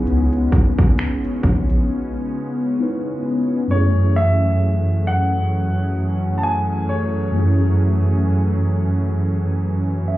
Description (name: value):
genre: contemporary R&B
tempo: 66 BPM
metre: 4/4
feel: swing 58% on 16ths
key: unclear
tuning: A4 = 442 Hz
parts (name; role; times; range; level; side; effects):
- clear grand piano; melody; 0.0-9.6 s; C#5 to A5; -26 LUFS; left 1 dB; ping-pong delay
- mellow tine electric piano; accompaniment; 0.0-10.2 s; F#2 to E5; -19 LUFS; equal; medium stereo tremolo
- warm analog pad; sustained chords; 0.0-10.2 s; C#3 to G#4; -23 LUFS; right 1 dB; wide subtle chorus, sidechain pumping
- round analog bass; bass; 0.0-1.9 s; A#1 to C#2; -19 LUFS; equal; none
- trap drum kit; drums; 0.1-1.9 s; finger snaps, hi-hat, kick drum; -15 LUFS; equal; none
room: light reverb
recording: heard muffled through a wall, club reverb, EQ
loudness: -16 LUFS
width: side -16 dB against mid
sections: 0.0-3.7 A section; 3.7-10.2 B section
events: break 1.9-3.7; tine electric piano fill 9.6-10.2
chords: 0.0 C#m9; 3.7 F#m9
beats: | 0.07 0.98 1.89 2.80 | 3.71 4.62 5.52 6.43 | 7.34 8.25 9.16 10.07